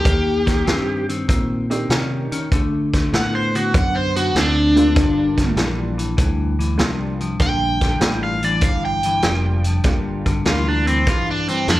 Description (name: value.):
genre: electric blues shuffle.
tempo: 98 BPM.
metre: 4/4.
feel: swing 68% on 8ths.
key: G minor.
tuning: A4 = 442 Hz.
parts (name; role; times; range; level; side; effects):
crunchy overdriven guitar; melody; 0.0-11.8 s; C4 to G5; -19 LUFS; equal; phaser, slapback echo.
honky-tonk upright piano; accompaniment; 0.0-10.8 s; G3 to Bb4; -28 LUFS; right 4 dB; slapback echo.
clean electric guitar; riff; 0.0-11.8 s; G2 to C#4; -24 LUFS; left 3 dB; none.
fingered electric bass; bass; 0.0-11.8 s; F1 to D3; -22 LUFS; equal; none.
vintage drum kit; drums; 0.1-11.8 s; hi-hat, kick drum, snare drum; -20 LUFS; equal; none.
room: little or no reverb.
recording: live gig heard through the venue's PA, club reverb.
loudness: -16 LUFS.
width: side -16 dB against mid.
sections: 0.0-9.8 A section; 9.8-11.8 B section.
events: overdriven electric guitar solo 9.8-11.8.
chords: 0.0 Ebmaj7; 2.5 D7; 5.0 Gm7.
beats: | 0.05 0.66 1.27 1.89 | 2.50 3.12 3.73 4.34 | 4.95 5.57 6.18 6.79 | 7.40 8.01 8.63 9.24 | 9.85 10.46 11.07 11.68.